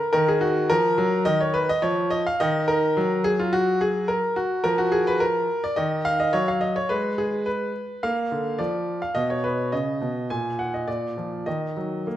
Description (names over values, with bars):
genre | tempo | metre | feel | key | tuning
classical-period piano sonatina | 106 BPM | 4/4 | straight | Eb minor | A4 = 440 Hz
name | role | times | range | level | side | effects
clear baby grand piano | solo | 0.0-12.2 s | Bb2 to Ab5 | -21 LUFS | equal | none
room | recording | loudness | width
moderate recital hall reverb, RT60 1.4 s | none | -21 LUFS | side -12 dB against mid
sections
0.0-12.2 A section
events
none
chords
0.1 Ebm; 4.6 N.C.; 5.8 Ebm; 6.9 N.C.; 8.0 Bb; 9.2 B; 10.3 N.C.; 10.9 Bb; 11.5 Ebm